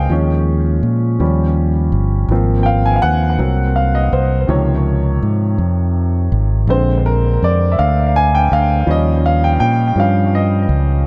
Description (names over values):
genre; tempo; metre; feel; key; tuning
slow gospel; 55 BPM (dotted quarters); 6/8; straight; unclear; A4 = 441 Hz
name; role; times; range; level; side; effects
clear upright piano; accompaniment; 0.0-11.1 s; C3 to Ab5; -19 LUFS; equal; analog delay
fingered electric bass; bass; 0.0-11.0 s; G1 to Bb2; -17 LUFS; equal; none
room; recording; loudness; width
small room ambience; echo-heavy mix; -15 LUFS; mono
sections
0.0-11.1 A section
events
upright piano solo 0.0-11.1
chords
0.1 Eb7sus4; 1.2 Eb9; 2.3 Ab6; 3.4 Cm7b5; 4.5 Dbmaj7; 6.7 Bb9; 8.9 Eb7